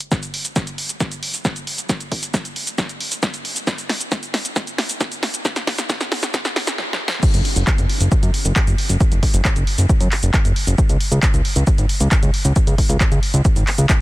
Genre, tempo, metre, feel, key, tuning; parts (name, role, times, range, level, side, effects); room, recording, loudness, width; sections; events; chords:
uplifting trance; 135 BPM; 4/4; straight; A4 = 438 Hz
punchy analog drum machine; drums; 0.0-14.0 s; crash cymbal, handclaps, hi-hat, shaker, snare drum; -22 LUFS; equal
electronic kick drum; drums; 0.1-14.0 s; -18 LUFS; equal
fat analog bass; bass; 7.3-13.9 s; F#1 to F#2; -17 LUFS; equal; sidechain pumping
little or no reverb; dense, heavily limited modern master, high-pass filter; -16 LUFS; side -18 dB against mid
0.0-7.2 A section; 7.2-14.0 B section
build-up 0.0-7.2; drum fill 0.1-6.8, 6.8-7.2; drop 7.2-14.0